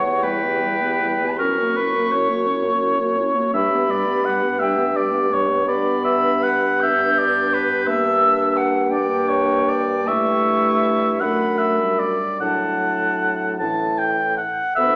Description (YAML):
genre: classical, slow romantic movement for wind quintet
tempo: 49-59 BPM (dotted quarters)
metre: 6/8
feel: rubato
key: unclear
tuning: A4 = 441 Hz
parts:
  - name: silver concert flute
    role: melody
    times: 0.0-15.0 s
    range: F#5 to G6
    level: -26 LUFS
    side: equal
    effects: none
  - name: clear oboe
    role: second line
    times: 0.0-15.0 s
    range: A#4 to A5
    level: -23 LUFS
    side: equal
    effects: none
  - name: mellow French horn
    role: accompaniment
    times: 0.0-15.0 s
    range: E3 to C#4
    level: -31 LUFS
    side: equal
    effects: none
  - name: mellow clarinet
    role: accompaniment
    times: 0.0-15.0 s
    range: C#4 to G4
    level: -34 LUFS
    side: equal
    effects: none
  - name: mellow bassoon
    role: bass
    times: 0.0-15.0 s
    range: D2 to A2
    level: -26 LUFS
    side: equal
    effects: none
room: wet recital hall reverb, RT60 1.5 s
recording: none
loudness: -19 LUFS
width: mono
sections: 0.0-14.8 A section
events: none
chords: 0.0 Em; 1.4 F#7; 3.5 G; 7.9 Gm; 10.1 A7/G; 11.2 D/F#; 12.4 D/A; 13.6 A